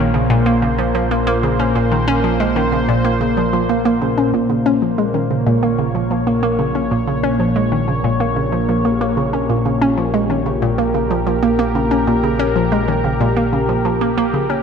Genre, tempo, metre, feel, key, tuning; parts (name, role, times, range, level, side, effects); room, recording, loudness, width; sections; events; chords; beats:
ambient, sequencer-driven space music; 93 BPM; 4/4; straight; Bb dorian; A4 = 440 Hz
lush unison pad; sustained chords; 0.0-14.6 s; Bb2 to Db5; -18 LUFS; equal; chorus
hollow square pluck; riff; 0.0-14.6 s; Bb2 to Db4; -18 LUFS; right 1 dB; chorus, phaser, analog delay
analog drone; bass; 0.0-14.6 s; Bb1; -24 LUFS; equal; chorus
wet plate reverb, RT60 2.5 s; dark, warm production; -14 LUFS; side -6 dB against mid
0.0-14.6 A section
0.0 Bbm
0.46 1.11 | 1.75 2.40 3.04 3.69 | 4.33 4.98 5.62 6.27 | 6.91 7.56 8.21 8.85 | 9.49 10.14 10.79 11.43 | 12.08 12.72 13.37 14.01